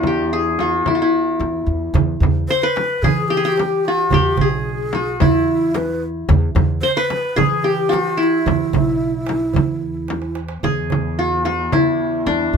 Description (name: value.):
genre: Arabic maqam ensemble.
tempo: 110 BPM.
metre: 4/4.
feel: straight.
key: E maqam saba.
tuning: A4 = 440 Hz.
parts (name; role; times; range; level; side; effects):
qanun; melody; 0.0-12.6 s; D4 to C5; -19 LUFS; left 2 dB; none.
upright bass; bass; 0.0-12.6 s; B1 to E3; -22 LUFS; equal; none.
rich cello; drone; 0.0-2.0, 10.6-12.6 s; E2; -30 LUFS; left 1 dB; none.
frame drum; percussion; 0.0-12.4 s; none; -24 LUFS; left 3 dB; none.
darbuka; percussion; 1.9-12.6 s; none; -22 LUFS; right 11 dB; none.
breathy low ney; second line; 2.5-10.4 s; E4 to C5; -22 LUFS; equal; none.
room: light reverb.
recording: minimal, uncompressed stereo recording.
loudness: -16 LUFS.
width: side -6 dB against mid.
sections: 0.0-1.9 A section; 1.9-10.6 B section; 10.6-12.6 A section.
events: drum fill 10.1-10.6.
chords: none.